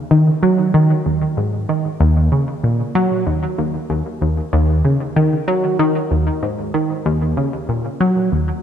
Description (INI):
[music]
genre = ambient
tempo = 95 BPM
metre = 4/4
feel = straight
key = Eb minor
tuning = A4 = 442 Hz
[part]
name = tight sequenced synth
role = solo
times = 0.1-8.5 s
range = Eb2 to Gb3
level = -15 LUFS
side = equal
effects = chorus, tape echo
[sound]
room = wet plate reverb, RT60 3.1 s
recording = echo-heavy mix, cassette tape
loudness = -15 LUFS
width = side -9 dB against mid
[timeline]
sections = 0.0-8.6 A section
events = none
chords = none